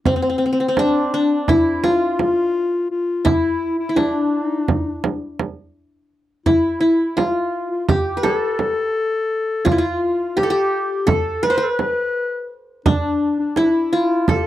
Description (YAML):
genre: Turkish makam ensemble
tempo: 169 BPM (eighths)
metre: 9/8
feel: straight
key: A makam ussak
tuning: A4 = 440 Hz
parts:
  - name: qanun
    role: melody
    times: 0.1-14.5 s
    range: C4 to C5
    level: -19 LUFS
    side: equal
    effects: none
  - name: mellow clarinet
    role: second line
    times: 0.1-14.5 s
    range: C4 to B4-29c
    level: -22 LUFS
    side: left 3 dB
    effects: none
  - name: frame drum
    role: percussion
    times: 0.1-14.4 s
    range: none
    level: -20 LUFS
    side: right 4 dB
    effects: none
room: little or no reverb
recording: dry, close 1970s-style studio recording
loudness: -17 LUFS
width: side -13 dB against mid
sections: 0.0-14.5 A section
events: none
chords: none